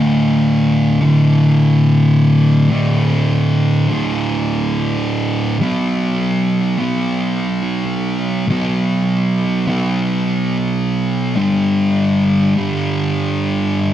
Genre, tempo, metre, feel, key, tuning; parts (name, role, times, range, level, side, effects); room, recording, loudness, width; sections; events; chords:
metal; 83 BPM; 4/4; swing 66% on 8ths; A4 = 443 Hz
thick fuzz guitar; solo; 0.0-13.9 s; D2 to B3; -14 LUFS; equal; distortion
moderate stone room reverb, RT60 1.2 s; band playing live in one room; -14 LUFS; side -11 dB against mid
0.0-13.9 A section
0.0 D5; 5.6 B5; 11.4 G5